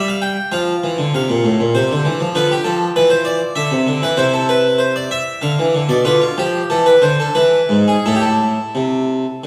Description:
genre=classical, baroque-style suite movement for harpsichord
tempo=83-102 BPM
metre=3/4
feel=rubato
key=unclear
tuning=A4 = 440 Hz
part: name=harpsichord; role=solo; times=0.0-9.5 s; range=G#2 to G5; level=-16 LUFS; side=equal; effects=none
room=wet recital hall reverb, RT60 1.4 s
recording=recorded in a church or concert hall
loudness=-16 LUFS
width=mono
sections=0.0-9.5 A section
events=none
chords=0.0 N.C.; 0.5 F5; 2.4 Dm13; 3.5 Cmaj9; 4.2 Cmaj7; 5.4 Dm; 6.0 Dmadd11; 6.7 Cmaj13; 7.3 E; 8.0 Am

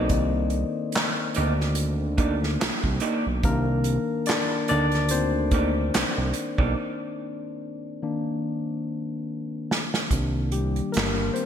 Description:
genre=R&B, neo-soul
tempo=72 BPM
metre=4/4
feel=swing 54% on 16ths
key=C minor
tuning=A4 = 439 Hz
part: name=electric guitar through a small old amp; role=second line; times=0.0-6.7 s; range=Bb3 to D5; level=-31 LUFS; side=right 4 dB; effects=wide subtle chorus
part: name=barky tine electric piano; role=accompaniment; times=0.0-11.5 s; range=Eb3 to Eb5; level=-27 LUFS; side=left 3 dB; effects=overdrive
part: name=fat analog bass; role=bass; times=0.0-11.3 s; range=G1 to D2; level=-26 LUFS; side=right 1 dB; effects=none
part: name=unplugged drum kit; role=drums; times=0.1-11.5 s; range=handclaps, hi-hat, kick drum, snare drum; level=-26 LUFS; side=right 1 dB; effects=gated reverb
room=moderate lush hall reverb, RT60 1.8 s, studio reverb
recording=bright 1980s-style digital production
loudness=-23 LUFS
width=side -9 dB against mid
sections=0.0-10.1 A section; 10.1-11.5 B section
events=tine electric piano solo 0.0-10.1, 10.1-11.5; break 6.8-10.1; drum fill 9.3-10.1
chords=0.0 Cm9

